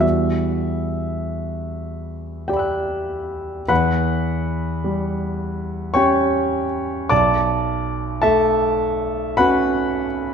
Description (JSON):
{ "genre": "classical, impressionist solo piano", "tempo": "47-55 BPM", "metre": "3/4", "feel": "rubato", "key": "E dorian", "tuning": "A4 = 436 Hz", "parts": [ { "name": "clear grand piano", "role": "solo", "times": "0.0-10.3 s", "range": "B1 to F#6", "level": "-18 LUFS", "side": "equal", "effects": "none" } ], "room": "moderate scoring stage reverb, RT60 1.6 s", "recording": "none", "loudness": "-18 LUFS", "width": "side -6 dB against mid", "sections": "0.0-3.7 A section; 3.7-10.3 B section", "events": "none", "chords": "0.0 Emadd9; 3.7 Em6; 7.1 Bm9" }